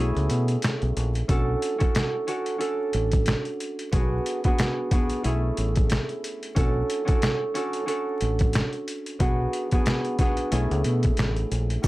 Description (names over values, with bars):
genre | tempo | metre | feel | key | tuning
hip hop, boom-bap hip-hop | 91 BPM | 4/4 | swing 57% on 16ths | B dorian | A4 = 439 Hz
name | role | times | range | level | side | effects
concert harp | accompaniment | 0.0-11.9 s | A3 to A4 | -27 LUFS | right 1 dB | cassette tape, high-pass filter, low-pass filter
deep dub fingered electric bass | bass | 0.0-11.9 s | A1 to B2 | -25 LUFS | equal | none
trip hop sampler-style drum kit | drums | 0.2-11.9 s | hi-hat, kick drum, snare drum | -25 LUFS | equal | none
tube shaker | percussion | 11.8-11.9 s | none | -36 LUFS | left 2 dB | none
room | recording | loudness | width
little or no reverb | dry, gritty hardware recording, vinyl crackle | -22 LUFS | side -18 dB against mid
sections
0.0-11.8 A section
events
break 0.0-1.3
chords
0.0 Amaj9; 1.3 Bm7 (rootless); 3.9 Bm6; 5.2 Amaj9; 6.6 Bm7 (rootless); 9.2 Bm6; 10.5 Amaj9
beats
0.63 | 1.29 1.95 2.61 3.27 | 3.93 4.59 5.25 5.91 | 6.57 7.23 7.88 8.54 | 9.20 9.86 10.52 11.18 | 11.84